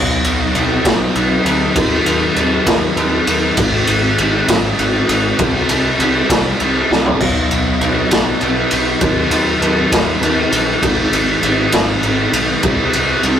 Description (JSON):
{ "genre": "quiet-loud alternative rock", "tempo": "66 BPM (dotted quarters)", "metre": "6/8", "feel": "straight", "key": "B major", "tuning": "A4 = 445 Hz", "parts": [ { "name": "thick fuzz guitar", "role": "riff", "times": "0.0-13.4 s", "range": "G#2 to E4", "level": "-18 LUFS", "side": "left 1 dB", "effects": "distortion" }, { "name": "growling picked electric bass", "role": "bass", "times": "0.0-13.4 s", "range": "G#1 to D#2", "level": "-22 LUFS", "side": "equal", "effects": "overdrive" }, { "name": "raw garage drum kit", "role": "drums", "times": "0.2-13.4 s", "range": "crash cymbal, kick drum, ride cymbal, snare drum, toms", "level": "-14 LUFS", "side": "equal", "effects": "none" } ], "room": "moderate small room ambience, RT60 0.5 s", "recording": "rough rehearsal-room recording, warm saturation", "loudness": "-12 LUFS", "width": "side -9 dB against mid", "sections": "0.0-13.4 A section", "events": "drum fill 6.9-7.2", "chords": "0.0 B; 1.8 D#m; 3.6 G#; 5.4 C; 7.2 B; 9.0 D#m; 10.8 G#; 12.6 C", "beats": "0.85 | 1.76 2.67 | 3.58 4.48 | 5.39 6.29 | 7.20 8.11 | 9.01 9.92 | 10.82 11.73 | 12.64" }